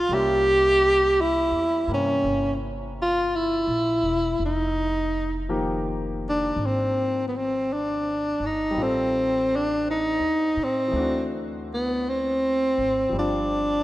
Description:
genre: jazz ballad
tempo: 55 BPM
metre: 4/4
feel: swing 68% on 8ths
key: unclear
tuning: A4 = 441 Hz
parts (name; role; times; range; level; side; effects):
- warm tenor saxophone; melody; 0.0-13.8 s; Cb4 to G4; -22 LUFS; equal; none
- clear grand piano; accompaniment; 0.0-13.8 s; C3 to E5; -32 LUFS; left 1 dB; none
- upright bass; bass; 0.0-13.8 s; E1 to A2; -32 LUFS; equal; none
room: moderate lush hall reverb, RT60 3.1 s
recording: rough home demo mix, nothing above 10.3 kHz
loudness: -21 LUFS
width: side -16 dB against mid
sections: 0.0-13.8 A section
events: none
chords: 0.1 C7b9; 4.4 Fm7; 8.7 Am7b5; 10.9 D7; 13.1 G7(no3)

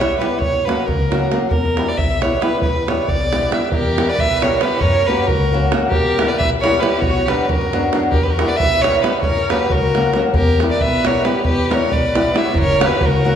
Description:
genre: balkan folk, Balkan wedding band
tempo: 272 BPM (eighths)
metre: 5/8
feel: straight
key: E dorian sharp4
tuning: A4 = 442 Hz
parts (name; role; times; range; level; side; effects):
- rich fiddle; melody; 0.0-13.4 s; A#4 to E5; -18 LUFS; equal; none
- flamenco guitar; accompaniment; 0.0-13.4 s; F#3 to G4; -21 LUFS; left 1 dB; none
- upright bass; bass; 0.0-13.4 s; F#1 to F#2; -22 LUFS; left 1 dB; none
- davul; percussion; 0.0-13.1 s; none; -21 LUFS; right 2 dB; none
- rich violin; second line; 3.7-13.4 s; F#4 to C#5; -25 LUFS; left 1 dB; none
room: wet recital hall reverb, RT60 1.9 s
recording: recorded in a church or concert hall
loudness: -14 LUFS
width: side -8 dB against mid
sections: 0.0-3.7 A section; 3.7-12.5 A section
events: none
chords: 0.4 F#; 1.5 Em; 4.8 F#; 5.9 Em; 7.0 Bm; 8.1 Em; 9.2 F#; 10.3 Em; 12.5 F#

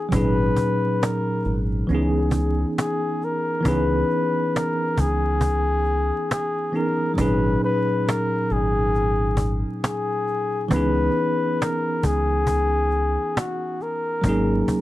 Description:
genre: lo-fi hip hop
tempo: 68 BPM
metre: 4/4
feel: swing 65% on 16ths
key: C# dorian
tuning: A4 = 440 Hz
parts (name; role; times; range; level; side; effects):
- breathy flugelhorn; melody; 0.0-14.8 s; F#4 to B4; -24 LUFS; left 2 dB; low-pass filter, plate reverb
- bell-like tine electric piano; accompaniment; 0.0-14.8 s; A#2 to G#4; -24 LUFS; right 1 dB; medium stereo tremolo, cassette tape, low-pass filter
- deep dub fingered electric bass; bass; 0.1-14.6 s; G#1 to C#2; -24 LUFS; equal; none
- cajon; drums; 0.1-14.8 s; none; -25 LUFS; equal; none
room: light reverb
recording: vinyl crackle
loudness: -20 LUFS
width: side -15 dB against mid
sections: 0.0-3.6 A section; 3.6-14.8 A section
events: none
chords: 0.1 G#7sus4; 1.9 C#m7; 7.2 G#7sus4; 10.7 C#m7; 14.2 G#7sus4

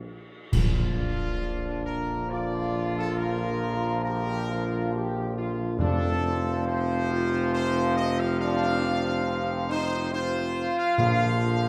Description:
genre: classical, ceremonial fanfare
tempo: 69 BPM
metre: 3/4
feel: straight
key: Bb major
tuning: A4 = 439 Hz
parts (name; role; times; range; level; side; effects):
- warm trumpet section; melody; 0.0-11.7 s; F4 to F5; -34 LUFS; equal; none
- clear trombone section; sustained chords; 0.0-11.7 s; C3 to G3; -35 LUFS; equal; none
- warm French horn section; sustained chords; 0.0-11.7 s; C4 to G4; -34 LUFS; equal; none
- warm tuba; bass; 0.0-11.7 s; F1 to Bb1; -31 LUFS; equal; none
- clash cymbals and concert bass drum; percussion; 0.5-2.3 s; none; -33 LUFS; equal; none
- timpani; percussion; 0.5-11.7 s; F2 to Bb2; -31 LUFS; equal; none
room: moderate scoring stage reverb, RT60 1.7 s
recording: none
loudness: -27 LUFS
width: mono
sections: 0.5-11.7 A section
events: band accent 0.5-1.4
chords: 0.0 Fsus2/Bb; 0.5 Bb; 5.8 F5; 11.0 Bb

